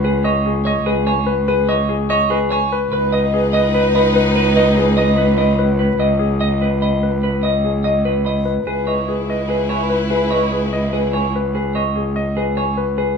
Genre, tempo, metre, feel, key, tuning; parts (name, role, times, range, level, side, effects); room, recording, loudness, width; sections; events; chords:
classical, minimalist pattern music; 292 BPM (eighths); 7/8; straight; C# minor; A4 = 440 Hz
warm grand piano; melody; 0.0-13.2 s; G#4 to B5; -21 LUFS; left 5 dB
semi-hollow electric guitar; arpeggios; 0.0-13.2 s; G#4 to D#5; -21 LUFS; equal
rich cello; bass; 0.0-13.2 s; C#2; -19 LUFS; right 2 dB
mellow hollow alto flute; second line; 2.9-5.5, 8.7-11.3 s; B4; -22 LUFS; right 3 dB
clear studio string section; sustained chords; 2.9-5.5, 8.7-11.3 s; D#4 to B4; -23 LUFS; left 4 dB
moderate stone room reverb, RT60 1.1 s; -15 LUFS; side -6 dB against mid
0.0-13.2 A section
0.0 C#7(no3); 2.9 G#m/C# (rootless); 8.7 C#m7